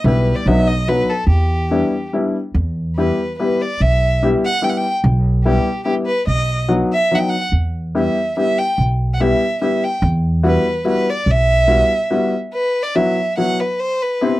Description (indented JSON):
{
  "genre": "musette waltz",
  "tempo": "144 BPM",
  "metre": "3/4",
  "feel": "straight",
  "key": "E minor",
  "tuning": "A4 = 439 Hz",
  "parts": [
    { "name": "rich violin", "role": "melody", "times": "0.0-14.4 s", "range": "G4 to G5", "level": "-19 LUFS", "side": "right 1 dB", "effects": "none" },
    { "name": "upright bass", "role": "bass", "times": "0.0-11.8 s", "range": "B1 to E2", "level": "-16 LUFS", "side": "right 1 dB", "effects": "none" },
    { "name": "clear upright piano", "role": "accompaniment", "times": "0.1-14.4 s", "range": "F#3 to G4", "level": "-18 LUFS", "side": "left 2 dB", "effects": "none" }
  ],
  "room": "little or no reverb",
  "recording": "dry, close 1970s-style studio recording",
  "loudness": "-15 LUFS",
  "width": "side -16 dB against mid",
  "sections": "0.0-2.6 A section; 2.6-12.5 B section; 12.5-14.4 A section",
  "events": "break 2.1-2.6",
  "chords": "0.1 Em/B; 0.5 B; 1.3 Em7; 2.6 Em; 6.3 B; 7.5 Em; 10.0 Emadd9; 12.5 Esus2; 13.8 Cmaj7"
}